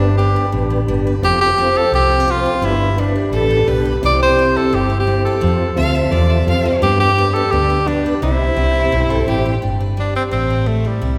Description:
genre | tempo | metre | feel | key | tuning
honky-tonk and classic country | 172 BPM | 4/4 | straight | unclear | A4 = 440 Hz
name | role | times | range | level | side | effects
clear tenor saxophone | melody | 0.0-11.2 s | G3 to D5 | -20 LUFS | equal | none
picked steel-string acoustic guitar | accompaniment | 0.0-11.2 s | G2 to B4 | -23 LUFS | equal | none
tonewheel organ | accompaniment | 0.0-9.6 s | B3 to C5 | -25 LUFS | equal | slow rotary speaker, chorus vibrato
vintage muted fingered electric bass | bass | 0.0-11.2 s | F1 to G2 | -21 LUFS | equal | none
rich fiddle | second line | 3.3-9.5 s | E4 to F5 | -24 LUFS | equal | none
room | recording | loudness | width
wet concert hall reverb, RT60 1.8 s | recorded in a church or concert hall | -16 LUFS | mono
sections
0.0-9.6 A section; 9.6-11.2 B section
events
none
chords
0.0 G; 1.2 F; 2.6 G; 4.0 C; 5.4 F; 6.8 G; 8.2 C; 9.6 G; 10.3 Am

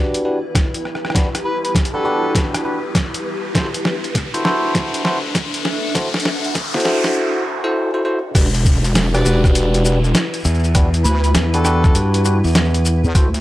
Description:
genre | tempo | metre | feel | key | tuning
glitch hop | 100 BPM | 4/4 | swing 64% on 16ths | E minor | A4 = 438 Hz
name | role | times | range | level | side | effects
bell-like tine electric piano | stabs | 0.0-13.3 s | D4 to C5 | -21 LUFS | equal | phaser, sidechain pumping, low-pass filter, analog delay
riser, noise sweep and downlifter | sound effects | 0.5-13.2 s | none | -28 LUFS | left 1 dB | none
granular cloud pad | texture | 0.2-13.4 s | D4 to F#5 | -26 LUFS | equal | built-in reverb, sidechain pumping
boom bap sampler-style drum kit | drums | 0.1-13.4 s | crash cymbal, hi-hat, rim click, shaker, snare drum | -20 LUFS | equal | studio reverb
electronic kick drum | drums | 0.5-13.3 s | none | -16 LUFS | equal | studio reverb
overdriven harmonica | melody | 1.4-2.4, 9.1-11.9 s | A4 to D5 | -26 LUFS | equal | analog delay
wobble bass | bass | 8.3-13.4 s | E1 to E2 | -16 LUFS | equal | chorus
modern bright fingered electric bass | bass | 10.4-13.0 s | E2 to G2 | -16 LUFS | equal | tube saturation
room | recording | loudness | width
little or no reverb | dry, gritty hardware recording, high-pass filter | -15 LUFS | side -16 dB against mid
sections
0.0-8.4 A section; 8.4-13.4 B section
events
build-up 0.0-8.4; drum fill 0.0-7.2; filter sweep on tine electric piano 0.0-8.4; filter sweep 0.0-8.4; riser 0.5-7.2; noise sweep 6.0-8.4; drop 8.4-13.4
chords
0.0 Em9; 3.6 D7; 8.4 Em9

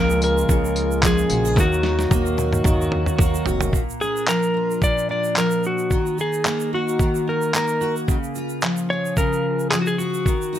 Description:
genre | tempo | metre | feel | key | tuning
acoustic pop | 110 BPM | 4/4 | swing 55% on 16ths | Eb minor | A4 = 440 Hz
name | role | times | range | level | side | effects
clean lap steel guitar | melody | 0.0-10.6 s | Gb4 to D5 | -22 LUFS | left 1 dB | none
felt-muted upright piano | accompaniment | 0.0-3.8 s | Bb3 to Eb5 | -35 LUFS | left 6 dB | none
picked steel-string acoustic guitar | accompaniment | 0.0-10.6 s | Bb2 to Ab4 | -24 LUFS | equal | double-tracked left and right
pedal harmonium | sustained chords | 0.0-3.7 s | Db3 to Gb4 | -28 LUFS | right 2 dB | none
upright bass | bass | 0.0-3.7 s | F1 to Eb2 | -24 LUFS | equal | none
tube shaker | percussion | 0.1-10.6 s | none | -35 LUFS | right 10 dB | none
dusty soul sampler-style drum kit | drums | 0.2-10.4 s | handclaps, kick drum, snare drum, tambourine, toms | -21 LUFS | equal | none
room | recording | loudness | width
light reverb | none | -18 LUFS | side -11 dB against mid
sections
0.0-3.7 A section; 3.7-10.6 B section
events
drum fill 1.6-3.7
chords
0.0 Db6; 1.6 Ebm; 3.7 Bb; 5.9 Ebm; 8.1 Db6

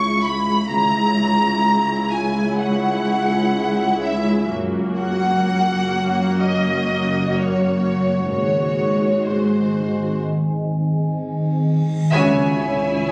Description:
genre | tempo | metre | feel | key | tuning
cinematic, suspense film score | 63 BPM | 4/4 | straight | unclear | A4 = 443 Hz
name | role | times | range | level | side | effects
rich studio violin section | melody | 0.0-13.1 s | B#4 to C#6 | -24 LUFS | equal | none
rich chamber viola section | accompaniment | 0.0-13.1 s | G#3 to F#4 | -27 LUFS | equal | none
rich chamber cello section | bass | 0.0-13.1 s | C#2 to C#3 | -25 LUFS | equal | none
organ-like drone | drone | 0.0-13.1 s | F#1 to C#2 | -26 LUFS | equal | ensemble chorus, built-in reverb
warm chamber double bass section | bass | 0.7-13.1 s | F#1 to C#2 | -30 LUFS | equal | none
reverse cymbal and sub drop | sound effects | 11.7-13.1 s | none | -39 LUFS | equal | none
rich studio violin section | second line | 12.1-13.1 s | C#5 to E5 | -25 LUFS | equal | none
Celtic harp | riff | 12.1-13.1 s | C#3 to C#4 | -27 LUFS | equal | none
room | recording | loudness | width
wet recital hall reverb, RT60 1.7 s | recorded on a phone in the room, club reverb, compression | -19 LUFS | mono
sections
0.0-12.1 A section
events
reverse cymbal 11.7-12.1; band accent 12.1-13.1; impact 12.1-13.1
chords
0.0 C#m; 4.5 F#; 8.3 G#7; 12.1 C#m

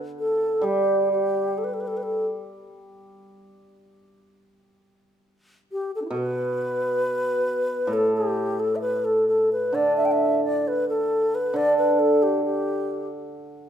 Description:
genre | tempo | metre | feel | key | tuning
chinese traditional, Chinese chamber ensemble | 67 BPM | 2/4 | rubato | D zhi mode | A4 = 440 Hz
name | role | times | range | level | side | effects
hammered dulcimer | accompaniment | 0.0-13.7 s | A2 to G3 | -26 LUFS | right 2 dB | none
bright low xiao | melody | 0.2-2.2, 5.7-13.1 s | D4 to G5 | -23 LUFS | left 1 dB | none
room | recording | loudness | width
wet recital hall reverb, RT60 1.7 s | minimal, uncompressed stereo recording | -21 LUFS | side -9 dB against mid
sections
0.0-9.7 A section; 9.7-13.7 B section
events
none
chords
none

